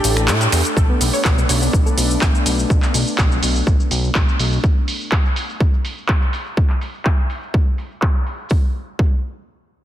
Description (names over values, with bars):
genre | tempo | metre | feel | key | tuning
progressive house | 124 BPM | 4/4 | straight | B minor | A4 = 442 Hz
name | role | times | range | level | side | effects
expressive synth lead | melody | 0.0-0.7 s | A4 | -31 LUFS | right 1 dB | none
airy dreamy lead | second line | 0.0-0.7 s | A4 | -33 LUFS | right 2 dB | none
airy breathy pad | sustained chords | 0.0-4.6 s | A3 to G4 | -24 LUFS | left 2 dB | chorus, sidechain pumping
wide unison pluck | arpeggios | 0.0-2.6 s | B3 to C#5 | -26 LUFS | equal | sidechain pumping, ping-pong delay
fat analog bass | bass | 0.0-4.6 s | A1 to A2 | -20 LUFS | equal | sidechain pumping
house drum kit | drums | 0.0-8.5 s | finger snaps, handclaps, hi-hat, shaker | -22 LUFS | equal | overdrive, low-pass filter on hats, low-pass filter on perc, low-pass filter on snare, low-pass filter on room
electronic kick drum | drums | 0.8-9.1 s | none | -16 LUFS | equal | overdrive
room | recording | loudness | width
light reverb | dense, heavily limited modern master | -15 LUFS | side -12 dB against mid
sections
0.8-8.5 A section; 8.5-9.8 B section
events
break 0.0-0.8; band accent 0.3; filter sweep on drum 0.8-8.5; filter sweep on analog synth pad 0.8-4.6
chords
0.0 A7sus4; 0.8 Bm7; 4.6 N.C.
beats
0.28 | 0.77 1.25 1.73 2.22 | 2.70 3.19 3.67 4.15 | 4.64 5.12 5.61 6.09 | 6.57 7.06 7.54 8.02 | 8.51 8.99